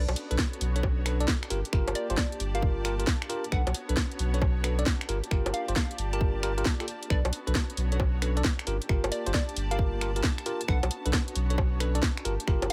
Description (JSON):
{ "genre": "UK garage, two-step garage", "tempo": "134 BPM", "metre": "4/4", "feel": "swing 66% on 16ths", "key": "unclear", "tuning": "A4 = 441 Hz", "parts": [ { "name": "hollow square pluck", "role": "melody", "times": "0.0-12.7 s", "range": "D5 to A5", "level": "-40 LUFS", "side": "equal", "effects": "chorus, cassette tape, dub echo" }, { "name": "airy breathy pad", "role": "sustained chords", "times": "0.0-12.7 s", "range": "Bb3 to A5", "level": "-46 LUFS", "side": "equal", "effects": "chorus, sidechain pumping" }, { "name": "bell-like tine electric piano", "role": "stabs", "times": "0.0-12.7 s", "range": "D4 to D5", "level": "-37 LUFS", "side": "equal", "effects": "dub echo" }, { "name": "soft dub sub bass", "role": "bass", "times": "0.0-12.7 s", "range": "G1 to B1", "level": "-31 LUFS", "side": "equal", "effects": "none" }, { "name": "rich symphonic string section", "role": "texture", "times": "0.0-12.7 s", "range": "B3 to A5", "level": "-44 LUFS", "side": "equal", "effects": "sidechain pumping" }, { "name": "garage drum kit", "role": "drums", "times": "0.1-12.7 s", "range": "bongos, finger snaps, hi-hat, snare drum", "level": "-34 LUFS", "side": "equal", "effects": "none" }, { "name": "electronic kick drum", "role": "drums", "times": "0.4-12.6 s", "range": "none", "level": "-31 LUFS", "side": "equal", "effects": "none" } ], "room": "little or no reverb", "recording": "none", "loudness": "-28 LUFS", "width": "mono", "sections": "0.0-12.7 A section", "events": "none", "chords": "0.0 Bm7; 1.5 Gm7; 3.5 Bm7; 5.1 Gm7; 7.1 Bm7; 8.7 Gm7; 10.7 Bm7", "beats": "0.39 0.83 1.28 | 1.73 2.18 2.62 3.07 | 3.52 3.97 4.42 4.86 | 5.31 5.76 6.21 6.66 | 7.10 7.55 8.00 8.45 | 8.89 9.34 9.79 10.24 | 10.68 11.13 11.58 12.03 | 12.48" }